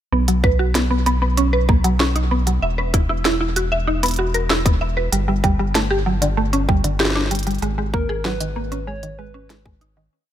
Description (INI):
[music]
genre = IDM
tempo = 96 BPM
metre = 4/4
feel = straight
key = B major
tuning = A4 = 440 Hz
[part]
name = mallet-like synth pluck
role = arpeggios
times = 0.1-10.1 s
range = D3 to E5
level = -21 LUFS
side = right 1 dB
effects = analog chorus, ping-pong delay
[part]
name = round analog bass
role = bass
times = 0.1-10.1 s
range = E1 to B1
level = -21 LUFS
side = equal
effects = none
[part]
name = glitchy drum kit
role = drums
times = 0.3-9.9 s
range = hi-hat, snare drum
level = -24 LUFS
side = equal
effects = overdrive, tape echo
[part]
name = electronic kick drum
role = drums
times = 0.4-9.8 s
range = none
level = -18 LUFS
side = equal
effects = overdrive
[part]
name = soft struck synth lead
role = melody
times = 7.9-9.8 s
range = A#4 to C#5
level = -30 LUFS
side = left 2 dB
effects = chorus, vintage 12-bit sampler grit, tape echo
[sound]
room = light reverb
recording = none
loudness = -17 LUFS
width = side -11 dB against mid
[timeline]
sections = 0.1-10.1 groove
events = fade-out 6.8-10.1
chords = 0.1 B5; 2.6 E5; 5.1 G5; 7.6 G#m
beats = | 0.12 0.75 1.38 2.00 | 2.62 3.25 3.88 4.50 | 5.12 5.75 6.38 7.00 | 7.62 8.25 8.88 9.50